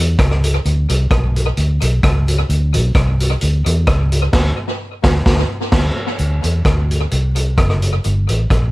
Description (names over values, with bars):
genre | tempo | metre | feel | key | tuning
ska | 130 BPM | 4/4 | straight | unclear | A4 = 439 Hz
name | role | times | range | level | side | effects
vintage muted fingered electric bass | bass | 0.0-8.7 s | F#1 to E2 | -15 LUFS | equal | none
street-band drum kit | drums | 0.2-8.6 s | crash cymbal, hi-hat, kick drum, rim click, snare drum | -17 LUFS | equal | tape echo
room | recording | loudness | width
little or no reverb | vinyl crackle | -13 LUFS | side -20 dB against mid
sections
0.0-6.2 A section; 6.2-8.7 B section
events
band accent 4.3-6.2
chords
none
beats
0.18 | 0.64 1.10 1.57 2.03 | 2.49 2.95 3.42 3.88 | 4.34 4.80 5.26 5.73 | 6.19 6.65 7.12 7.58 | 8.04 8.51